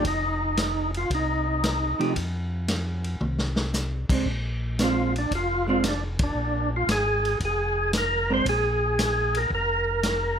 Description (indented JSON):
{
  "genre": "soul jazz organ trio",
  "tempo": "114 BPM",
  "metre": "4/4",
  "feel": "swing 69% on 8ths",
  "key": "unclear",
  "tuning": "A4 = 440 Hz",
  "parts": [
    { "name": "percussive tonewheel organ", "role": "melody", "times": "0.0-10.4 s", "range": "D4 to C5", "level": "-25 LUFS", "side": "equal", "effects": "slow rotary speaker, overdrive, chorus vibrato, plate reverb" },
    { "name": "vintage hollow-body jazz guitar", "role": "accompaniment", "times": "0.0-8.4 s", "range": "F3 to G4", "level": "-26 LUFS", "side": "right 4 dB", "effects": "none" },
    { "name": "tonewheel organ", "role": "bass", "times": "0.0-10.4 s", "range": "F1 to C3", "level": "-28 LUFS", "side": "equal", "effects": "chorus vibrato, slow rotary speaker" },
    { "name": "vintage drum kit", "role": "drums", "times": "0.0-10.2 s", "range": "crash cymbal, hi-hat, kick drum, ride cymbal, snare drum, toms", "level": "-29 LUFS", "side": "equal", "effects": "none" }
  ],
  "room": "moderate small room reverb, RT60 0.6 s",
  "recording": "none",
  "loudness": "-23 LUFS",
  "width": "side -8 dB against mid",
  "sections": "0.0-10.4 A section",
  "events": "drum fill 3.2-3.7; band accent 6.1",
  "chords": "0.0 F7(no3); 4.3 Bb7"
}